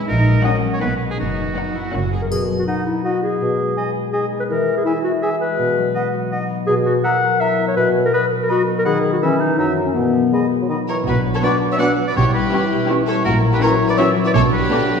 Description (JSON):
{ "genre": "cinematic, playful, whimsical film cue", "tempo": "165 BPM", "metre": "3/4", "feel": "straight", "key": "B major, B minor from 11.1 s", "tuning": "A4 = 436 Hz", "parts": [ { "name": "concert harp", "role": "arpeggios", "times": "0.0-15.0 s", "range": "F#2 to E5", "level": "-22 LUFS", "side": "left 4 dB", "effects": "none" }, { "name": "rich studio cello section", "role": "bass", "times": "0.0-2.2, 11.1-14.6 s", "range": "A#2 to G#4", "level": "-24 LUFS", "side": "right 4 dB", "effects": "none" }, { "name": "bright oboe", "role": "second line", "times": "0.1-15.0 s", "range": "F#4 to F#5", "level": "-26 LUFS", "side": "right 1 dB", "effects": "none" }, { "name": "rich chamber double bass section", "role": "bass", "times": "0.1-2.2, 11.1-14.6 s", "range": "F#1 to B1", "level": "-23 LUFS", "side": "right 1 dB", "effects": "none" }, { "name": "rich studio violin section", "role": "melody", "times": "0.4-2.2, 11.4-15.0 s", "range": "F#4 to F#5", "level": "-29 LUFS", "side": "left 3 dB", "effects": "none" }, { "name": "bright studio viola section", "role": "accompaniment", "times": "0.4-2.2, 11.4-15.0 s", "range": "A#3 to E4", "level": "-26 LUFS", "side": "right 2 dB", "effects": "none" }, { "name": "rich studio violin section", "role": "second line", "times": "0.5-2.2, 10.9-15.0 s", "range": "C#4 to D5", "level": "-25 LUFS", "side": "left 1 dB", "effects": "none" }, { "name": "mellow clarinet", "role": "second line", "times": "1.9-14.8 s", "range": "B3 to F#5", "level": "-20 LUFS", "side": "left 2 dB", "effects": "none" }, { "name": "mellow bassoon", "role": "accompaniment", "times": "2.3-14.8 s", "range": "B2 to G#3", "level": "-24 LUFS", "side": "right 1 dB", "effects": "none" }, { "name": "triangle", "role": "percussion", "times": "2.3-3.0 s", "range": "none", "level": "-34 LUFS", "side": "left 3 dB", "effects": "none" }, { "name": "mellow hollow silver concert flute", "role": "second line", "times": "2.7-14.8 s", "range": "F#5 to D6", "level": "-30 LUFS", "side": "equal", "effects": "none" }, { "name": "celesta", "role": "melody", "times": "10.9-15.0 s", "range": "A#5 to F#6", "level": "-27 LUFS", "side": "left 3 dB", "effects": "none" }, { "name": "mellow French horn section", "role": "sustained chords", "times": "11.1-15.0 s", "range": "F#3 to E4", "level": "-23 LUFS", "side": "left 3 dB", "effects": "none" } ], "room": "wet scoring stage reverb, RT60 1.6 s", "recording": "heard from further back in the room", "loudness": "-16 LUFS", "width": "side -6 dB against mid", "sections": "0.0-2.3 A section; 2.3-11.1 B section; 11.1-15.0 C section", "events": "none", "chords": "0.1 F#/A#; 0.8 B; 1.2 B/F#; 1.9 F#; 2.3 B; 3.4 G#m/B; 4.5 E; 5.6 B; 6.7 F#7/B; 7.8 B; 8.9 B/D#; 9.2 C#m7/E; 9.6 F#7; 10.0 B; 11.1 Bm; 12.2 C#m7b5/B; 13.3 F#7/A#; 14.4 Bm", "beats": "| 0.08 0.45 0.82 | 1.19 1.57 1.94 | 2.31 2.68 3.05 | 3.41 3.77 4.14 | 4.50 4.86 5.22 | 5.59 5.95 6.32 | 6.68 7.04 7.40 | 7.76 8.13 8.49 | 8.86 9.22 9.59 | 9.96 10.34 10.71 | 11.08 11.44 11.81 | 12.17 12.54 12.90 | 13.27 13.63 13.99 | 14.35 14.72" }